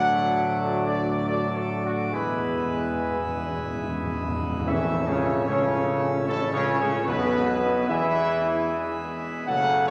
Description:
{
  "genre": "classical, ceremonial fanfare",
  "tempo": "69-77 BPM",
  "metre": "3/4",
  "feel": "straight",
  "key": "A major",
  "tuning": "A4 = 439 Hz",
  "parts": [
    { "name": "dark trumpet section", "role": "melody", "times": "0.0-9.9 s", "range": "F#4 to F#5", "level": "-30 LUFS", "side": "equal", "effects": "none" },
    { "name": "clear trombone section", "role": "sustained chords", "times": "0.0-9.9 s", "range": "A2 to A3", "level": "-32 LUFS", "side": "equal", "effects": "none" },
    { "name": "mellow French horn section", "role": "sustained chords", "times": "0.0-9.9 s", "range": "A3 to A4", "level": "-36 LUFS", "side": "equal", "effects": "none" },
    { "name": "pipe organ, plenum", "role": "sustained chords", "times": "0.0-9.9 s", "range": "A2 to D5", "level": "-33 LUFS", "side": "equal", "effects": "none" },
    { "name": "warm tuba", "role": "bass", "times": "0.0-9.9 s", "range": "F#1 to E2", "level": "-33 LUFS", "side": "equal", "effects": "none" },
    { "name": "timpani", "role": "percussion", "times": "2.1-8.3 s", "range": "E2 to A2", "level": "-36 LUFS", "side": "equal", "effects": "none" },
    { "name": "tam-tam", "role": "percussion", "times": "4.7-7.9 s", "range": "none", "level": "-38 LUFS", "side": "equal", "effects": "none" }
  ],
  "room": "wet church reverb, RT60 2.7 s",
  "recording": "none",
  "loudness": "-25 LUFS",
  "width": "mono",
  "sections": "0.0-4.7 A section; 4.7-9.9 B section",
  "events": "timpani fill 2.1-4.7; band accent 4.7-5.5",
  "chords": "0.0 D; 2.1 E; 4.7 A; 7.1 E/B"
}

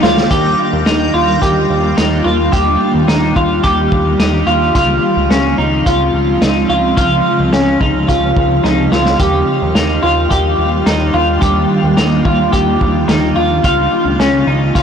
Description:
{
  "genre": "dream pop",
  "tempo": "108 BPM",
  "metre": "4/4",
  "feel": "straight",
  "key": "unclear",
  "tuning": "A4 = 439 Hz",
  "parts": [
    { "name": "granular cloud pad", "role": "sustained chords", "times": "0.0-14.8 s", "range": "Db3 to G4", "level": "-17 LUFS", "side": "right 1 dB", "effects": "built-in reverb" },
    { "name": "semi-hollow electric guitar", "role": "arpeggios", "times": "0.0-14.8 s", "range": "Db4 to G4", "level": "-14 LUFS", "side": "equal", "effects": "analog chorus, ping-pong delay" },
    { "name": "fat analog bass", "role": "bass", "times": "0.0-14.8 s", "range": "Db2 to Eb2", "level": "-18 LUFS", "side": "equal", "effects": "transformer saturation" },
    { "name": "vintage drum kit", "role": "drums", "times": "0.0-14.8 s", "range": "hi-hat, kick drum, snare drum", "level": "-18 LUFS", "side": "equal", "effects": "none" },
    { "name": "backwards swelling texture", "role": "texture", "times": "0.0-0.7 s", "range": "G6 to Bb6", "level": "-30 LUFS", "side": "equal", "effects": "built-in reverb, ping-pong delay" }
  ],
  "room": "moderate shimmer reverb, RT60 7.5 s",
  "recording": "blown-out, overdriven recording, overdrive, faint mains hum",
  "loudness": "-10 LUFS",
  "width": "side -7 dB against mid",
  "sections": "0.3-14.8 A section",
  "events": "drum fill 0.0-0.3, 8.6-9.2",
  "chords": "0.3 Ebmaj9; 4.8 Dbmaj7; 9.2 Ebmaj9; 13.6 Dbmaj7"
}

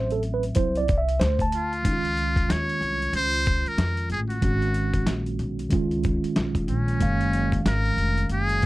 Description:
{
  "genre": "hip hop, jazz-hop",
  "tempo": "93 BPM",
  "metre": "4/4",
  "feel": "swing 62% on 16ths",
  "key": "Db major",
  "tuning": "A4 = 440 Hz",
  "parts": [
    { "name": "mellow tine electric piano", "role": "accompaniment", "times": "0.0-8.7 s", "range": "Eb3 to A5", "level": "-27 LUFS", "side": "right 3 dB", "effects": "medium stereo tremolo" },
    { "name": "upright bass", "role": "bass", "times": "0.0-8.7 s", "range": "F1 to F2", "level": "-27 LUFS", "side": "equal", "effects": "none" },
    { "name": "dusty soul sampler-style drum kit", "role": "drums", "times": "0.1-8.7 s", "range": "hi-hat, kick drum, snare drum", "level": "-26 LUFS", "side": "equal", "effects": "overdrive" },
    { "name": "trumpet with metal mute", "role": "melody", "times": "1.6-8.7 s", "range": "Db4 to Db5", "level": "-27 LUFS", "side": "left 1 dB", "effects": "none" }
  ],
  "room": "little or no reverb",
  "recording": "dry, close 1970s-style studio recording",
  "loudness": "-22 LUFS",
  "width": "side -18 dB against mid",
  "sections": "0.0-1.8 A section; 1.8-8.7 B section",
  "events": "tine electric piano solo 0.0-1.8",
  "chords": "0.0 D9; 1.8 Dbmaj9; 4.4 Abm7; 5.7 Db7; 7.0 Gbmaj9"
}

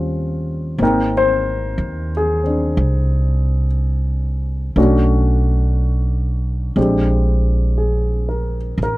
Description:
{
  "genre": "jazz ballad",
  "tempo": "60 BPM",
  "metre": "4/4",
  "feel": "swing 66% on 8ths",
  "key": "unclear",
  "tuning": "A4 = 445 Hz",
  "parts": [
    { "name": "dark baby grand piano", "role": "accompaniment", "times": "0.0-9.0 s", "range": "G3 to G5", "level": "-20 LUFS", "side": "left 2 dB", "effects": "none" },
    { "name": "upright bass", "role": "bass", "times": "0.0-9.0 s", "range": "Ab1 to Eb2", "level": "-17 LUFS", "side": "right 1 dB", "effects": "none" }
  ],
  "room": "little or no reverb",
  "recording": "dry, close 1970s-style studio recording",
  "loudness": "-15 LUFS",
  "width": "side -18 dB against mid",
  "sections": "0.0-9.0 A section",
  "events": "none",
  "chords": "0.0 Eb13; 0.8 Abmaj9; 4.8 Bm9; 6.8 Bb13"
}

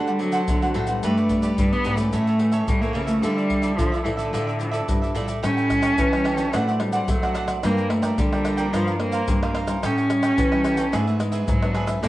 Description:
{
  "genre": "samba and choro",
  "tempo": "109 BPM",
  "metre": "4/4",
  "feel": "straight",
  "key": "D minor",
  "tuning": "A4 = 441 Hz",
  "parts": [
    { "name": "cavaquinho", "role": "accompaniment", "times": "0.0-12.1 s", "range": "D4 to G5", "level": "-29 LUFS", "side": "right 3 dB", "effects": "none" },
    { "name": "nylon-string guitar", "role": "accompaniment", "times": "0.0-12.1 s", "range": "G2 to F#4", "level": "-32 LUFS", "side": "left 3 dB", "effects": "none" },
    { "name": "nylon-string guitar", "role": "bass", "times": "0.0-12.1 s", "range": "G2 to A3", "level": "-26 LUFS", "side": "equal", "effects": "none" },
    { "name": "rich cello", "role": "melody", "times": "0.1-12.1 s", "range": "D3 to C#4", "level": "-23 LUFS", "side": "equal", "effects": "cassette tape" },
    { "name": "tube shaker, pandeiro, surdo and tamborim", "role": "percussion", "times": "0.1-12.1 s", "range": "none", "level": "-26 LUFS", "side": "equal", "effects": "none" }
  ],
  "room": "moderate studio reverb, RT60 0.6 s",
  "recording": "home recording on cassette, nothing above 10.6 kHz",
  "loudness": "-19 LUFS",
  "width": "side -16 dB against mid",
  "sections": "0.0-5.4 A section; 5.4-12.1 B section",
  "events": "none",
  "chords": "0.0 D7; 1.0 G; 2.1 A; 3.2 Dmadd9; 5.4 A7; 6.5 D7/A; 7.6 Gm7; 8.7 C7sus4/G; 9.8 A7; 10.9 E7/G#"
}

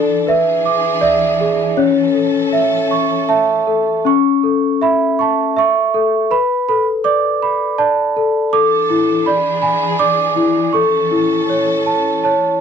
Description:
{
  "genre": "children's music, lullaby",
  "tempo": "80 BPM",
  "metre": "3/4",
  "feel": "rubato",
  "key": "A major",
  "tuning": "A4 = 440 Hz",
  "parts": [
    { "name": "large celesta", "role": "melody", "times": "0.0-12.6 s", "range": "C#4 to D6", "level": "-13 LUFS", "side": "equal", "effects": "none" },
    { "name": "warm symphonic string section", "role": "sustained chords", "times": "0.0-4.0, 8.5-12.6 s", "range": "E3 to A4", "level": "-23 LUFS", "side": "left 1 dB", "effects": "none" }
  ],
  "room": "light reverb",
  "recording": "dark, warm production",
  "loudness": "-13 LUFS",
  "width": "side -7 dB against mid",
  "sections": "0.0-4.1 A section; 4.1-12.6 A section",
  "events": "none",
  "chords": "0.3 E7; 1.8 A; 6.3 Bm7; 8.5 E7sus4; 9.3 E7; 10.7 A"
}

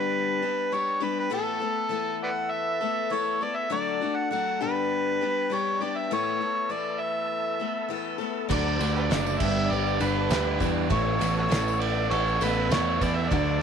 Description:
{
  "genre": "folk rock and heartland rock",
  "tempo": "100 BPM",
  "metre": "4/4",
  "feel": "straight",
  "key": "unclear",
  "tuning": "A4 = 441 Hz",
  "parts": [
    { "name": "overdriven harmonica", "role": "melody", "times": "0.0-13.6 s", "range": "F#4 to F#5", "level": "-28 LUFS", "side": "right 1 dB", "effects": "none" },
    { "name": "picked steel-string acoustic guitar", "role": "accompaniment", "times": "0.0-13.6 s", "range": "G2 to A4", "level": "-31 LUFS", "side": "left 14 dB", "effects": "none" },
    { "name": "tonewheel organ", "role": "sustained chords", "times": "0.0-13.6 s", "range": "D4 to E6", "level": "-36 LUFS", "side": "right 2 dB", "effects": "slow rotary speaker" },
    { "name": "barky reed electric piano", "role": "accompaniment", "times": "8.5-13.6 s", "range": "D4 to E5", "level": "-37 LUFS", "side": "right 12 dB", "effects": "overdrive, fast tremolo" },
    { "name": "crunchy overdriven guitar", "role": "riff", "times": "8.5-13.6 s", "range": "G2 to A4", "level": "-31 LUFS", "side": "right 15 dB", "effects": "none" },
    { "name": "modern bright picked electric bass", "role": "bass", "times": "8.5-13.6 s", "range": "F#1 to E2", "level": "-28 LUFS", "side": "right 1 dB", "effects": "none" },
    { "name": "cloth-damped thuddy drum kit", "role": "drums", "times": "8.5-13.5 s", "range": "crash cymbal, kick drum, ride cymbal, snare drum", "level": "-29 LUFS", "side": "right 2 dB", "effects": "none" },
    { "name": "tambourine", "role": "percussion", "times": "8.8-13.2 s", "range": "none", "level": "-44 LUFS", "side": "left 18 dB", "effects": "none" }
  ],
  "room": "moderate spring reverb, RT60 2.3 s",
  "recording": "1960s-style stereo with parts hard left and right",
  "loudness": "-24 LUFS",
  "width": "side -7 dB against mid",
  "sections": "0.0-13.6 A section",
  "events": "none",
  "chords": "0.0 G; 1.3 Asus2; 3.7 D; 4.6 G; 6.1 Asus2; 8.5 D; 9.4 G; 10.9 Asus2"
}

